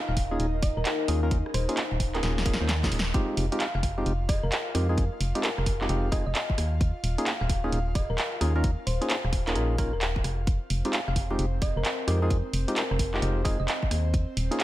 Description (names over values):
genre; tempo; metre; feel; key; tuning
UK garage, two-step garage; 131 BPM; 4/4; swing 64% on 16ths; F minor; A4 = 440 Hz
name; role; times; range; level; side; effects
thumb-piano-like synth pluck; melody; 0.0-14.6 s; Bb4 to F5; -35 LUFS; left 1 dB; chorus, digital delay
airy breathy pad; sustained chords; 0.0-14.6 s; C4 to F5; -41 LUFS; equal; chorus, sidechain pumping
deep dark ambient pad; texture; 0.0-3.1 s; Eb4 to Ab5; -37 LUFS; left 6 dB; chorus, built-in reverb, sidechain pumping
organ-like FM bass; bass; 0.1-14.5 s; Eb1 to F2; -28 LUFS; equal; none
electronic kick drum; drums; 0.2-14.3 s; none; -27 LUFS; equal; none
punchy analog drum machine; drums; 0.2-14.6 s; handclaps, hi-hat, rim click, snare drum; -31 LUFS; right 1 dB; none
percussive organ stab; stabs; 0.3-14.6 s; Ab3 to C5; -32 LUFS; equal; chorus, digital delay
room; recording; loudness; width
digital ambience; none; -24 LUFS; side -15 dB against mid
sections
0.0-3.1 A section; 3.1-14.6 B section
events
drum fill 2.2-3.1; band accent 3.0; drop 3.1-14.6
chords
0.0 Eb9sus4; 3.1 Fm9; 6.6 Eb9sus4; 10.5 Fm9; 13.9 Eb9sus4